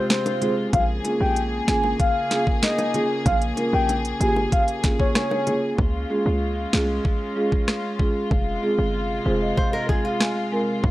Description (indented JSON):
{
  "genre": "dancehall",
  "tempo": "95 BPM",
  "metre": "4/4",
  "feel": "straight",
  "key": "F minor",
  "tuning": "A4 = 440 Hz",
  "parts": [
    { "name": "soft octave-layered synth lead", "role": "melody", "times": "0.0-5.6 s", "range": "C5 to Ab5", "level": "-24 LUFS", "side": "left 1 dB", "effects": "chorus, phaser" },
    { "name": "warm studio string section", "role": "sustained chords", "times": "0.0-10.9 s", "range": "C3 to Ab4", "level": "-29 LUFS", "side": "left 2 dB", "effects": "sidechain pumping" },
    { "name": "island pop drum kit", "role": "drums", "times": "0.1-10.9 s", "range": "hi-hat, kick drum, rim click, snare drum", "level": "-22 LUFS", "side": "equal", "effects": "overdrive" },
    { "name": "bongos", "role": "percussion", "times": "0.1-5.6 s", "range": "none", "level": "-32 LUFS", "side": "left 2 dB", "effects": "none" },
    { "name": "marimba with soft mallets", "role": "accompaniment", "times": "0.4-10.8 s", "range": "Ab3 to Ab5", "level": "-25 LUFS", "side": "right 1 dB", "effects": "sidechain pumping" },
    { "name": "short 808-style bass", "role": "bass", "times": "0.7-10.9 s", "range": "F1 to Db2", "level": "-25 LUFS", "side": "equal", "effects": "none" },
    { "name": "nylon-string guitar", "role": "arpeggios", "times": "9.6-10.8 s", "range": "F4 to C5", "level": "-30 LUFS", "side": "left 1 dB", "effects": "none" }
  ],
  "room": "small room ambience",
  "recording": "dry, gritty hardware recording",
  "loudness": "-20 LUFS",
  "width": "side -16 dB against mid",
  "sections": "0.0-5.8 A section; 5.8-10.9 B section",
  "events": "hi-hats muted 5.8-10.9; marimba fill 8.9-10.8",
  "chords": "0.0 Fm; 0.7 Bbm7; 5.8 Db; 8.3 Fm"
}